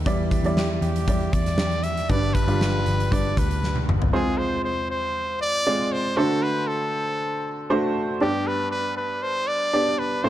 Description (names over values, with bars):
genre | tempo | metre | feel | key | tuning
piano-driven pop | 118 BPM | 4/4 | straight | unclear | A4 = 440 Hz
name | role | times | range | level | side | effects
clear upright piano | accompaniment | 0.0-10.3 s | G2 to D5 | -25 LUFS | right 1 dB | none
vintage muted picked electric bass | bass | 0.0-4.1 s | G1 to E2 | -25 LUFS | equal | none
huge arena drum kit | drums | 0.1-4.1 s | hi-hat, kick drum, snare drum, toms | -25 LUFS | equal | none
clear trumpet | melody | 0.6-10.3 s | G4 to E5 | -26 LUFS | equal | none
room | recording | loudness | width
light reverb, small room ambience | dark, warm production | -21 LUFS | side -13 dB against mid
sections
0.0-4.1 A section; 4.1-10.3 B section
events
drum fill 3.6-4.1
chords
0.1 Em7; 2.1 G; 4.1 Fm; 6.2 D7; 8.2 G